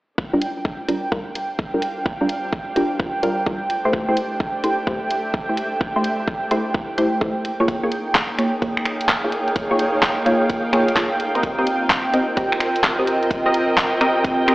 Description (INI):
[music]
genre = UK garage, two-step garage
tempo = 128 BPM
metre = 4/4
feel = swing 65% on 16ths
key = G minor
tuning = A4 = 440 Hz
[part]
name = warm analog pad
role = sustained chords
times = 0.2-14.5 s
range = G5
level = -26 LUFS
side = right 2 dB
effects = chorus, tremolo, sidechain pumping
[part]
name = electronic kick drum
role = drums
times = 0.2-14.4 s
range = none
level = -24 LUFS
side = equal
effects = overdrive
[part]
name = dark studio string section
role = texture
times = 0.2-14.5 s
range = A3 to G5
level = -25 LUFS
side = equal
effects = sidechain pumping
[part]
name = punchy chord stab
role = stabs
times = 0.3-14.5 s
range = G3 to Eb5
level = -22 LUFS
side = equal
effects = chorus, phaser, tape echo
[part]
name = garage drum kit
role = drums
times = 0.4-14.5 s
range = finger snaps, handclaps, hi-hat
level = -21 LUFS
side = equal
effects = overdrive
[sound]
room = moderate plate reverb, RT60 1.9 s, digital ambience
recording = played on a big sound system in a bare room, stone room reverb, AM radio sound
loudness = -18 LUFS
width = side -18 dB against mid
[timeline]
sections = 0.2-14.5 A section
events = fade-in on string section 0.2-14.5; filter sweep on synth stab 0.2-14.5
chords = 0.2 Gm7; 3.7 Am7; 7.4 Bbm7; 11.4 Cm7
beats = | 0.18 0.65 1.12 1.59 | 2.06 2.53 3.00 3.46 | 3.93 4.40 4.87 5.34 | 5.81 6.28 6.75 7.21 | 7.68 8.15 8.62 9.09 | 9.56 10.03 10.49 10.96 | 11.43 11.90 12.37 12.84 | 13.31 13.78 14.24